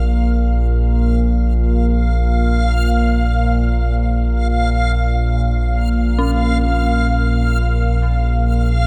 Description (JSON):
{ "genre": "dark ambient drone", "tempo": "free time", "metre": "none", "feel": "none", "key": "Bb minor", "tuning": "A4 = 440 Hz", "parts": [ { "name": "dark detuned synth bell", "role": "arpeggios", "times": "0.0-8.9 s", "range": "Db4", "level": "-28 LUFS", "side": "equal", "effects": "chorus, tape echo" }, { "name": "deep rumbling drone", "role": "drone", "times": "0.0-8.9 s", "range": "Bb1 to Bb2", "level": "-17 LUFS", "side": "equal", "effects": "built-in reverb" }, { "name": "backwards swelling texture", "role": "texture", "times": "0.0-8.9 s", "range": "F5", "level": "-26 LUFS", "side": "equal", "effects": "built-in reverb" } ], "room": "wet cathedral reverb, RT60 5.7 s", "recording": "none", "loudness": "-17 LUFS", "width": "mono", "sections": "0.0-8.9 A section", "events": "none", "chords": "0.0 Bb5", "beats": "free time" }